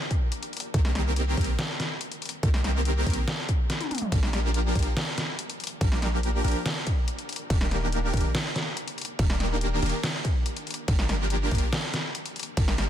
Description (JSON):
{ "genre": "future bass", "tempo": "142 BPM", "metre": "4/4", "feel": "half-time", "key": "Eb major", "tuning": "A4 = 441 Hz", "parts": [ { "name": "dubstep drum kit", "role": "drums", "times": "0.1-12.9 s", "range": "crash cymbal, hi-hat, snare drum, toms", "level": "-30 LUFS", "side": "equal", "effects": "none" }, { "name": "electronic kick drum", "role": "drums", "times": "0.1-12.7 s", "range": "none", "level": "-25 LUFS", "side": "equal", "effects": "none" }, { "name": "supersaw chords", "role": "riff", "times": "0.7-12.9 s", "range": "Eb3 to Bb4", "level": "-32 LUFS", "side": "equal", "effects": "sidechain pumping, dub echo" }, { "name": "warm 808-style bass", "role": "bass", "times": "0.7-12.9 s", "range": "Eb1 to C2", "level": "-27 LUFS", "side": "equal", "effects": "sidechain pumping" } ], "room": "digital ambience", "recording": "dense, heavily limited modern master", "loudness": "-24 LUFS", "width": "side -10 dB against mid", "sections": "0.0-12.9 A section", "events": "break 3.7-4.1; drum fill 3.7-4.1", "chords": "0.0 N.C.; 0.7 Cm7; 4.1 Bb6; 7.5 Ebmaj7; 10.9 Gm7", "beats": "0.32 | 0.74 1.16 1.59 2.01 | 2.43 2.85 3.28 3.70 | 4.12 4.54 4.97 5.39 | 5.81 6.23 6.66 7.08 | 7.50 7.92 8.35 8.77 | 9.19 9.61 10.04 10.46 | 10.88 11.30 11.73 12.15 | 12.57" }